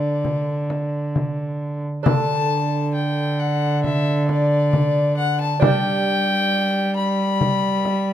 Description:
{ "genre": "classical, renaissance-style consort dance", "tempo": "67 BPM", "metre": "4/4", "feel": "straight", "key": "unclear", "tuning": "A4 = 440 Hz", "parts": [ { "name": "rich violin", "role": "melody", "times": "0.0-8.1 s", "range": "D5 to B5", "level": "-23 LUFS", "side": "left 5 dB", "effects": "none" }, { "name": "lute", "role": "accompaniment", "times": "0.0-8.1 s", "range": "D3 to A4", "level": "-27 LUFS", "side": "right 6 dB", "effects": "none" }, { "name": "rich cello", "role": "bass", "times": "0.0-8.1 s", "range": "D3 to G3", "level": "-21 LUFS", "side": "right 2 dB", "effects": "none" }, { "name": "frame drum", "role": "percussion", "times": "0.2-8.1 s", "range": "none", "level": "-22 LUFS", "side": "left 2 dB", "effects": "none" } ], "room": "moderate stone room reverb, RT60 1.0 s", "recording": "none", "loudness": "-18 LUFS", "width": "side -10 dB against mid", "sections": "0.0-2.0 A section; 2.0-8.1 A section", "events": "none", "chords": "0.0 D5; 5.6 G" }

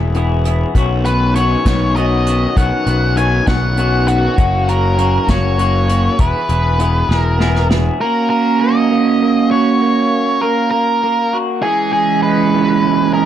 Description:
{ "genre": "indie rock", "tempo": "66 BPM (dotted quarters)", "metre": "6/8", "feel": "straight", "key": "unclear", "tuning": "A4 = 440 Hz", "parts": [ { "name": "crunchy overdriven guitar", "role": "riff", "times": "0.0-13.3 s", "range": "E3 to G#4", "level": "-18 LUFS", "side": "right 7 dB", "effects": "lush chorus" }, { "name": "electric guitar through a small old amp", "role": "riff", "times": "0.0-13.3 s", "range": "D#3 to G#4", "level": "-20 LUFS", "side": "left 4 dB", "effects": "wide subtle chorus" }, { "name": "fuzz picked electric bass", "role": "bass", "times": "0.0-7.9 s", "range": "E1 to B1", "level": "-15 LUFS", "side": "equal", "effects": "overdrive" }, { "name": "unplugged drum kit", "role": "drums", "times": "0.1-7.8 s", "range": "hi-hat, kick drum, snare drum", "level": "-18 LUFS", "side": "equal", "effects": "none" }, { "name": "octave-fuzz lead guitar", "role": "melody", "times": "1.1-13.3 s", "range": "F#4 to G#5", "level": "-18 LUFS", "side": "equal", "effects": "distortion, analog delay" } ], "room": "light reverb", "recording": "dark, warm production", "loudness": "-12 LUFS", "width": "side -10 dB against mid", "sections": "0.0-8.0 A section; 8.0-13.3 B section", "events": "drum fill 7.1-8.0", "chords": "0.0 E; 0.8 Badd9; 4.4 F#; 6.2 E; 8.0 F#; 11.6 C#m" }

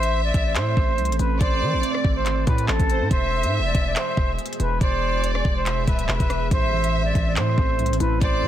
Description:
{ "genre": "hip hop, drill", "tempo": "141 BPM", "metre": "4/4", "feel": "half-time", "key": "A harmonic minor", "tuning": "A4 = 440 Hz", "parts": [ { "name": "silver concert flute", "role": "melody", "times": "0.0-8.5 s", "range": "A4 to D5", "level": "-26 LUFS", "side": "right 1 dB", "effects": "low-pass filter, digital delay" }, { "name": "warm studio violin section", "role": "second line", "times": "0.0-8.5 s", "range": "C5 to E5", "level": "-29 LUFS", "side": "left 1 dB", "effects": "digital delay" }, { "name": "deep dark ambient pad", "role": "sustained chords", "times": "0.5-8.5 s", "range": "B2 to A4", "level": "-31 LUFS", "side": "right 3 dB", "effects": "chorus, built-in reverb" }, { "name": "distorted 808-style bass", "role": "bass", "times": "0.0-8.5 s", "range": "D1 to E3", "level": "-24 LUFS", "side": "equal", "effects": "distortion" }, { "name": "drill drum kit", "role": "drums", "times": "0.0-8.3 s", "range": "handclaps, hi-hat, kick drum, rim click", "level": "-23 LUFS", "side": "equal", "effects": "none" }, { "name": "muted felt-like synth keys", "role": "accompaniment", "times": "6.5-8.5 s", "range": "A2 to E4", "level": "-28 LUFS", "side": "equal", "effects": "chorus, low-pass filter" } ], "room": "digital ambience", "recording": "dense, heavily limited modern master", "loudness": "-19 LUFS", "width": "side -11 dB against mid", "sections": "0.0-8.5 A section", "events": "none", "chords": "0.0 Am; 3.1 E; 6.5 Am" }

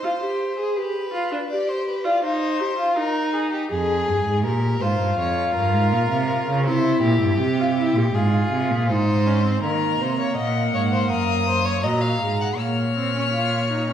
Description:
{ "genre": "classical, baroque-style fugue for string quartet", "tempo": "81 BPM", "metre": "4/4", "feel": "straight", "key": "F minor", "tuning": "A4 = 440 Hz", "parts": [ { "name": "rich violin", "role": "second line", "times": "0.0-13.9 s", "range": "G4 to Gb5", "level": "-26 LUFS", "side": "left 3 dB", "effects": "none" }, { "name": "rich viola", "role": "accompaniment", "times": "0.0-13.9 s", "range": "Gb3 to Ab4", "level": "-24 LUFS", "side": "equal", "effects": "none" }, { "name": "rich cello", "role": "bass", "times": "3.7-13.9 s", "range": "F2 to Eb3", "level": "-22 LUFS", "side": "right 2 dB", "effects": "none" }, { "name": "rich violin", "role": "melody", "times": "9.6-13.9 s", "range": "Gb5 to F6", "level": "-26 LUFS", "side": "left 5 dB", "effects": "none" } ], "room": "wet recital hall reverb, RT60 1.2 s", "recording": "heard from further back in the room", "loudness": "-19 LUFS", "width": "side -9 dB against mid", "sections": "0.0-9.6 A section; 9.6-13.9 B section", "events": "none", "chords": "0.0 D7(b5, no3) (rootless); 0.8 G7; 2.2 Cm/Eb; 3.7 Fm; 5.2 Gm7b5/F; 6.7 C7; 8.1 Fm/Ab; 9.6 Cm7b5; 12.6 Bbm" }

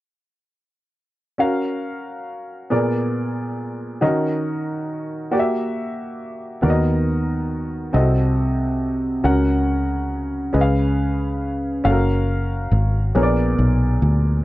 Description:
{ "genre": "slow gospel", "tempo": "46 BPM (dotted quarters)", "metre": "6/8", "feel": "straight", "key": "F# major", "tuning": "A4 = 440 Hz", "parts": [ { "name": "clear upright piano", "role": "accompaniment", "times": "1.4-14.4 s", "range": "A#2 to F#5", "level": "-21 LUFS", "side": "equal", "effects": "none" }, { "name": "fingered electric bass", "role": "bass", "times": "6.6-14.4 s", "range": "F#1 to D#2", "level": "-20 LUFS", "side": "equal", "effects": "none" } ], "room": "little or no reverb", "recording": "dry, close 1970s-style studio recording", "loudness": "-18 LUFS", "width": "side -17 dB against mid", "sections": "1.4-11.8 A section; 11.8-14.4 B section", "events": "none", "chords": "1.4 F#maj7; 2.7 A#7b9; 4.0 D#m7; 5.3 F#7b9; 6.6 Bmaj7/D#; 7.9 Cdim7; 9.2 F#/C#; 10.5 C#7; 11.8 F#maj7; 13.2 A#7b9" }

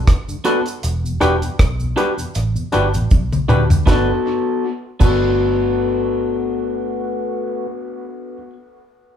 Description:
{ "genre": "lovers rock reggae", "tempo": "79 BPM", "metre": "4/4", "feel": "swing 56% on 16ths", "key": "G major", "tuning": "A4 = 440 Hz", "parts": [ { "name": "vintage muted fingered electric bass", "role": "bass", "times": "0.0-8.4 s", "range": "E1 to D2", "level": "-22 LUFS", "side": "right 1 dB", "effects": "none" }, { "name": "deep reggae drum kit", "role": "drums", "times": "0.1-5.2 s", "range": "crash cymbal, hi-hat, kick drum, rim click, snare drum, toms", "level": "-16 LUFS", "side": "equal", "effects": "none" }, { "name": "cabasa", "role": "percussion", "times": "0.1-5.2 s", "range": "none", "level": "-36 LUFS", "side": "right 3 dB", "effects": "none" }, { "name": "mellow tonewheel organ", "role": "accompaniment", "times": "0.3-7.7 s", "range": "E2 to F#4", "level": "-28 LUFS", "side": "left 3 dB", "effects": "overdrive, chorus vibrato, slow rotary speaker, dub echo" }, { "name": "electric guitar through a small old amp", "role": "stabs", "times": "0.4-8.5 s", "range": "B3 to B4", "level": "-21 LUFS", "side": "left 1 dB", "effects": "none" }, { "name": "barky tine electric piano", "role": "accompaniment", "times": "0.5-8.4 s", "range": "D4 to B4", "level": "-23 LUFS", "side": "left 2 dB", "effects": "none" } ], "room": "moderate large studio reverb, RT60 0.9 s", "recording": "band playing live in one room", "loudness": "-16 LUFS", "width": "side -9 dB against mid", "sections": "0.0-3.9 A section; 3.9-6.9 B section", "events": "drum fill 3.1-3.9", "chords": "0.0 Gmaj9; 0.8 Em7; 3.9 Gmaj9" }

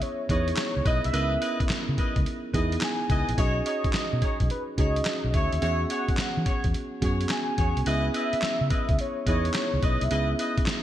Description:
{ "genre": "R&B, new jack swing", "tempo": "107 BPM", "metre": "4/4", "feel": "swing 66% on 16ths", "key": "C# dorian", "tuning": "A4 = 439 Hz", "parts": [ { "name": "warm velvety synth lead", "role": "melody", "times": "0.0-10.6 s", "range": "B4 to G#5", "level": "-31 LUFS", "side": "equal", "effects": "chorus, digital delay" }, { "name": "mellow tine electric piano", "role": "accompaniment", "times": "0.0-10.8 s", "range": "B3 to A#4", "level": "-31 LUFS", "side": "right 3 dB", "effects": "none" }, { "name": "boom bap sampler-style drum kit", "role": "drums", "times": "0.0-10.8 s", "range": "handclaps, hi-hat, kick drum, snare drum", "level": "-27 LUFS", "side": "equal", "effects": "gated reverb" }, { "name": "warm horn section", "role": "stabs", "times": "0.3-10.6 s", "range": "D#4 to D#5", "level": "-33 LUFS", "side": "left 2 dB", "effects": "none" }, { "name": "vintage muted fingered electric bass", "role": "bass", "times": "0.3-10.7 s", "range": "A#1 to E3", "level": "-28 LUFS", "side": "equal", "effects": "none" } ], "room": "moderate plate reverb, RT60 2.3 s", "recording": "bright 1980s-style digital production", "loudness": "-23 LUFS", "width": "side -12 dB against mid", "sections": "0.0-10.8 A section", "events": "kick muted 7.9-8.4", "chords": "0.0 C#m9; 3.4 B69; 5.6 E69; 7.9 C#m9" }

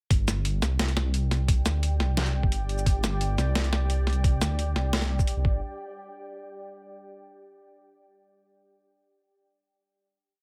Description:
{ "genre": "half-time drum and bass", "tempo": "174 BPM", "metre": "4/4", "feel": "half-time", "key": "unclear", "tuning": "A4 = 441 Hz", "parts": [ { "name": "deep dark ambient pad", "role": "sustained chords", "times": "1.4-5.6 s", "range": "G4 to G5", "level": "-40 LUFS", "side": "equal", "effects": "chorus, built-in reverb, sidechain pumping" }, { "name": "dark detuned saw bass", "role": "bass", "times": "0.1-5.6 s", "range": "G1 to D2", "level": "-28 LUFS", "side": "equal", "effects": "tube saturation" }, { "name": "boom bap sampler-style drum kit", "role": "drums", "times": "0.1-5.3 s", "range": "hi-hat, shaker, snare drum", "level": "-32 LUFS", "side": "equal", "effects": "none" }, { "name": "electronic kick drum", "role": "drums", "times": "0.1-5.5 s", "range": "none", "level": "-27 LUFS", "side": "equal", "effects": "none" } ], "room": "little or no reverb", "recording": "none", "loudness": "-26 LUFS", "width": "mono", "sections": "0.1-5.6 drop; 5.6-7.0 final hit", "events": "drop 0.1-5.6", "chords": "0.1 G5; 5.6 N.C." }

